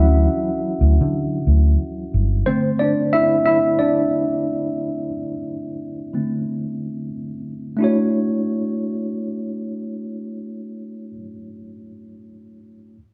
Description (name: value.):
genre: R&B.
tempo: 90 BPM.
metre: 4/4.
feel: swing 60% on 16ths.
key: D major.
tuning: A4 = 439 Hz.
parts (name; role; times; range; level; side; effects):
tine electric piano; accompaniment; 0.0-13.0 s; D3 to A5; -23 LUFS; equal; none.
vintage muted fingered electric bass; bass; 0.0-2.4 s; G1 to D3; -18 LUFS; equal; none.
room: light reverb.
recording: band playing live in one room.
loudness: -20 LUFS.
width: mono.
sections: 0.0-7.8 A section; 7.8-10.5 B section.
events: tine electric piano solo 0.0-7.8.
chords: 0.0 Dmaj9; 2.5 Amadd11/D; 7.8 Dmaj9.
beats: 0.45 1.12 1.79 | 2.45 3.12 3.79 4.45 | 5.12 5.79 6.45 7.12 | 7.79 8.45 9.12 9.79.